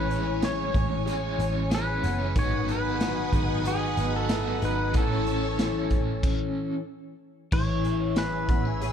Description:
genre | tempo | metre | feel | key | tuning
dream pop | 93 BPM | 4/4 | straight | A lydian | A4 = 437 Hz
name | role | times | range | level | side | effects
pedal steel guitar | melody | 0.0-8.9 s | G#4 to C#5 | -32 LUFS | right 2 dB | digital delay
overdriven electric guitar | accompaniment | 0.0-6.7 s | G#2 to E4 | -34 LUFS | right 4 dB | tremolo, lush chorus
string machine, full ensemble | sustained chords | 0.0-8.9 s | B4 to E6 | -33 LUFS | left 1 dB | ensemble chorus
electric guitar at the edge of break-up | arpeggios | 0.0-8.9 s | D#3 to G#4 | -31 LUFS | left 6 dB | analog chorus, digital delay
vintage muted picked electric bass | bass | 0.0-8.9 s | F#1 to A1 | -30 LUFS | equal | none
raw garage drum kit | drums | 0.1-8.9 s | crash cymbal, hi-hat, kick drum, snare drum, tambourine | -28 LUFS | right 1 dB | none
room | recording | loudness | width
small room ambience | dark, warm production | -24 LUFS | side -8 dB against mid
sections
0.0-7.5 A section; 7.5-8.9 A section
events
stop 6.2-7.5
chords
0.0 Amaj7; 2.4 G#m7; 4.9 Amaj7

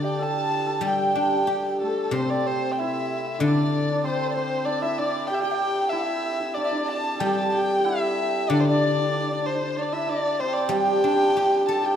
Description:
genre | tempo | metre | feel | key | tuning
chinese traditional, Chinese chamber ensemble | 94 BPM | 2/4 | rubato | G zhi mode | A4 = 440 Hz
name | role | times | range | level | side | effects
dark erhu | melody | 0.0-12.0 s | A4 to A5 | -28 LUFS | left 2 dB | none
hammered dulcimer | second line | 0.0-12.0 s | A3 to C5 | -26 LUFS | right 3 dB | none
reedy large dizi | second line | 0.0-12.0 s | A4 to A5 | -30 LUFS | left 4 dB | none
guzheng | accompaniment | 0.0-12.0 s | C3 to A4 | -26 LUFS | left 2 dB | none
room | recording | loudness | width
wet recital hall reverb, RT60 1.7 s | none | -21 LUFS | side -8 dB against mid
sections
0.0-2.1 A section; 2.1-12.0 B section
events
none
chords
none

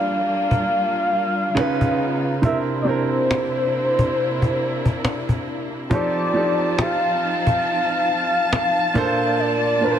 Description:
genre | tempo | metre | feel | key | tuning
contemporary R&B | 69 BPM | 4/4 | swing 58% on 16ths | unclear | A4 = 437 Hz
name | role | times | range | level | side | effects
gliding portamento lead | melody | 0.0-10.0 s | Bb4 to F5 | -22 LUFS | left 1 dB | chorus, ping-pong delay
clear baby grand piano | accompaniment | 0.0-10.0 s | Bb2 to C5 | -24 LUFS | right 3 dB | none
muted studio string section | sustained chords | 0.0-10.0 s | C3 to A5 | -25 LUFS | left 1 dB | none
cajon | drums | 0.1-10.0 s | none | -22 LUFS | left 1 dB | none
room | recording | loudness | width
light reverb, studio reverb | none | -18 LUFS | side -9 dB against mid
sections
0.0-10.0 A section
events
none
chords
0.0 Gm7; 1.6 C#9; 2.4 C9; 5.9 F7; 9.0 Bbmaj7

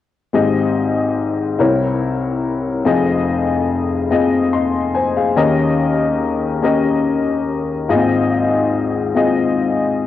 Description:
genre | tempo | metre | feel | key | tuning
gospel | 48 BPM (dotted quarters) | 6/8 | straight | Ab major | A4 = 440 Hz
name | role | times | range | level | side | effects
warm upright piano | solo | 0.3-10.1 s | F1 to C6 | -15 LUFS | left 3 dB | cassette tape
room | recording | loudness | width
moderate spring reverb, RT60 2.0 s, small room reverb | home recording on cassette | -15 LUFS | side -12 dB against mid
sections
0.3-10.1 A section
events
none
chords
0.3 Abmaj7; 1.6 C7b9; 2.9 Fm7; 5.4 Eb7; 7.9 Ab6

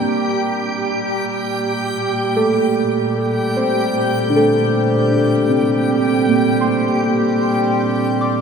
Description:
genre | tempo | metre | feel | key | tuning
ambient | 75 BPM | 4/4 | straight | unclear | A4 = 439 Hz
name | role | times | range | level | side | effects
muted felt-like synth keys | arpeggios | 0.0-8.4 s | Bb3 to D6 | -17 LUFS | right 1 dB | chorus, diffuse ambient delay
dark studio cello section | bass | 0.0-8.4 s | Bb2 | -25 LUFS | left 1 dB | none
hand-pumped harmonium | drone | 0.0-8.4 s | G3 | -24 LUFS | left 2 dB | none
backwards swelling texture | texture | 0.0-8.4 s | G4 to G5 | -22 LUFS | right 2 dB | built-in reverb
room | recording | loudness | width
wet lush hall reverb, RT60 3.1 s | none | -15 LUFS | side -6 dB against mid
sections
0.0-8.4 A section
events
none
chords
0.1 Bb

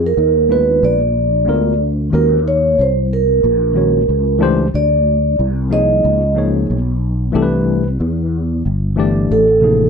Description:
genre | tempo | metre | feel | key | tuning
hip hop, jazz-hop | 92 BPM | 4/4 | swing 61% on 16ths | unclear | A4 = 440 Hz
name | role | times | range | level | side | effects
vibraphone with soft mallets | melody | 0.0-9.9 s | A4 to Eb5 | -14 LUFS | right 2 dB | none
sustaining fretless electric bass | bass | 0.0-9.9 s | G1 to F2 | -17 LUFS | equal | ensemble chorus
tine electric piano | accompaniment | 0.5-9.9 s | C3 to D5 | -17 LUFS | left 3 dB | slow stereo tremolo
room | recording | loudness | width
light reverb | dark, warm production | -12 LUFS | side -6 dB against mid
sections
0.0-9.9 A section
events
none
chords
0.0 Fm7b5; 0.8 Bb7b9; 2.1 Ebm7; 4.7 Dm7; 6.0 Db7; 7.3 C69

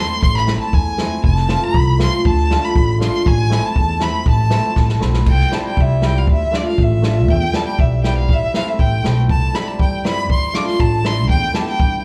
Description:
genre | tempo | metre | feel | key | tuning
klezmer | 119 BPM | 2/4 | straight | A harmonic minor, C major from 5.3 s | A4 = 439 Hz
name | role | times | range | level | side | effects
clear violin | melody | 0.0-12.0 s | D5 to D6 | -24 LUFS | equal | plate reverb, slapback echo
cimbalom | accompaniment | 0.0-11.7 s | G3 to G4 | -25 LUFS | equal | plate reverb, slapback echo
upright bass | bass | 0.0-12.0 s | F1 to G2 | -20 LUFS | equal | none
open jazz drum kit | drums | 0.2-11.9 s | crash cymbal, kick drum, snare drum | -22 LUFS | equal | none
room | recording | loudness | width
light reverb | live gig heard through the venue's PA, club reverb | -16 LUFS | mono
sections
0.0-5.3 A section; 5.3-12.0 B section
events
drum fill 4.8-5.3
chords
0.0 Am; 1.2 F; 2.3 Dm; 3.3 Am; 5.3 C; 6.3 Dm; 7.3 Em; 8.3 Am; 9.3 C; 10.3 Dm; 11.3 Em

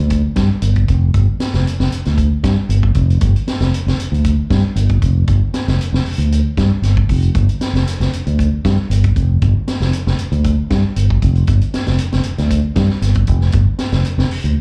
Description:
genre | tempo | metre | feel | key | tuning
afrobeat | 116 BPM | 4/4 | swing 53% on 16ths | unclear | A4 = 440 Hz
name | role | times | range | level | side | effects
fingered electric bass | bass | 0.0-14.5 s | F1 to G2 | -16 LUFS | equal | none
vintage drum kit | drums | 0.1-14.6 s | hi-hat, kick drum, snare drum | -22 LUFS | equal | none
room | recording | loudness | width
little or no reverb | live gig heard through the venue's PA, club reverb | -16 LUFS | mono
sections
0.0-14.6 A section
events
none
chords
none

